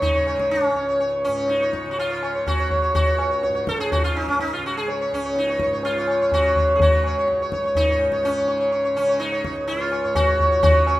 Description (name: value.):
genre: indian classical, Hindustani.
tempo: 124 BPM.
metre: 4/4.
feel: straight.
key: C# major.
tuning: A4 = 441 Hz.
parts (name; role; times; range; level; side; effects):
sitar; melody; 0.0-11.0 s; C#4 to C#5; -20 LUFS; equal; none.
tanpura; drone; 0.0-11.0 s; C#2 to C#3; -32 LUFS; right 1 dB; none.
tabla; percussion; 0.0-11.0 s; none; -24 LUFS; equal; none.
room: moderate recital hall reverb, RT60 1.4 s.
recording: minimal, uncompressed stereo recording.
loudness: -19 LUFS.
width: side -16 dB against mid.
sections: 0.0-11.0 A section.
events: none.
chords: none.